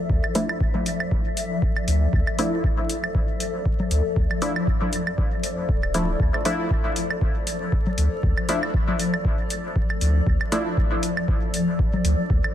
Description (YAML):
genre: dub techno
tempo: 118 BPM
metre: 4/4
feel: swing 56% on 16ths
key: D minor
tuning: A4 = 441 Hz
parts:
  - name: granular cloud pad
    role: sustained chords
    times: 0.0-12.5 s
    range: F3 to E5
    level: -28 LUFS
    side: left 2 dB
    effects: built-in reverb, sidechain pumping
  - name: filtered dub chord stab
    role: stabs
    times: 0.0-12.5 s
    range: F3 to E4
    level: -28 LUFS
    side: equal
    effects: chorus, phaser, vintage 12-bit sampler grit, sidechain pumping, dub echo
  - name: warm sub bass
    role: bass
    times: 0.1-12.4 s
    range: D1 to D2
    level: -21 LUFS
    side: equal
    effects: sidechain pumping
  - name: electronic kick drum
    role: drums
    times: 0.1-12.4 s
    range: none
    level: -23 LUFS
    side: equal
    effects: none
  - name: claves and congas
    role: percussion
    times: 0.2-12.5 s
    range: none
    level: -31 LUFS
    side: equal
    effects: sidechain pumping on perc, dub echo
  - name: electronic hi-hat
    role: drums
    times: 0.4-12.2 s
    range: none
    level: -30 LUFS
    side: left 1 dB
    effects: none
room: light reverb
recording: dense, heavily limited modern master, vinyl crackle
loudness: -20 LUFS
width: side -11 dB against mid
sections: 0.0-12.5 A section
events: none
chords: 0.0 Dmadd9